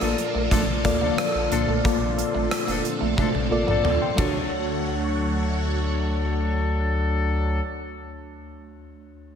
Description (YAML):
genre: 1980s-style pop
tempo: 90 BPM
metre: 4/4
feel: straight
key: D major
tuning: A4 = 441 Hz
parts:
  - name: FM electric piano with auto-pan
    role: accompaniment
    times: 0.0-9.4 s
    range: D2 to C6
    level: -27 LUFS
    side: left 2 dB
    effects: phaser
  - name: phased string machine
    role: sustained chords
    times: 0.0-7.6 s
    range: D3 to C#5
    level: -29 LUFS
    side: equal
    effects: ensemble chorus, phaser
  - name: clean electric guitar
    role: riff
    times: 0.0-4.6 s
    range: A3 to Bb3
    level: -32 LUFS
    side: right 6 dB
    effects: lush chorus, slapback echo
  - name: warm horn section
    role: stabs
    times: 0.0-7.6 s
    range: F3 to A4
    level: -31 LUFS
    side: left 4 dB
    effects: ping-pong delay, slapback echo
  - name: round analog bass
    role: bass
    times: 0.0-7.6 s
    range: F1 to D2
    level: -27 LUFS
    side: equal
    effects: none
  - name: gated 80s drum kit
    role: drums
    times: 0.0-4.3 s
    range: hi-hat, kick drum, ride cymbal, rim click, toms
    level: -27 LUFS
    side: equal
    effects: none
room: wet concert hall reverb, RT60 2.4 s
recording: big arena sound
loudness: -21 LUFS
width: side -7 dB against mid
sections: 0.0-4.5 A section; 4.5-7.2 B section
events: drum fill 3.2-4.5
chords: 0.0 Bbmaj7; 4.2 Dmaj7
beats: 0.52 1.18 | 1.85 2.52 3.18 3.85 | 4.51 5.18 5.85 6.51